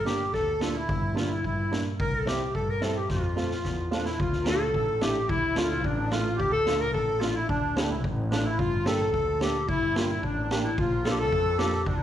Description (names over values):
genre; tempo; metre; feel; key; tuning
klezmer; 109 BPM; 2/4; straight; F major, D minor from 4.2 s; A4 = 439 Hz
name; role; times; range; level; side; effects
mellow clarinet; melody; 0.0-12.0 s; D4 to Bb4; -28 LUFS; left 2 dB; none
accordion; second line; 0.0-12.0 s; D4 to Bb4; -34 LUFS; right 3 dB; light tremolo tuning
dark upright piano; accompaniment; 0.0-11.7 s; G3 to G4; -33 LUFS; right 4 dB; none
dark double bass; bass; 0.0-12.0 s; G1 to G2; -31 LUFS; equal; none
street-band drum kit; drums; 0.1-12.0 s; kick drum, snare drum; -32 LUFS; equal; none
room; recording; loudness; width
moderate recital hall reverb, RT60 1.4 s; recorded in a church or concert hall; -24 LUFS; side -11 dB against mid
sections
0.0-4.2 A section; 4.2-12.0 B section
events
drum fill 3.1-4.2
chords
0.0 Gm; 2.0 C; 3.1 F; 4.2 Dm; 8.6 Gm; 10.8 Bb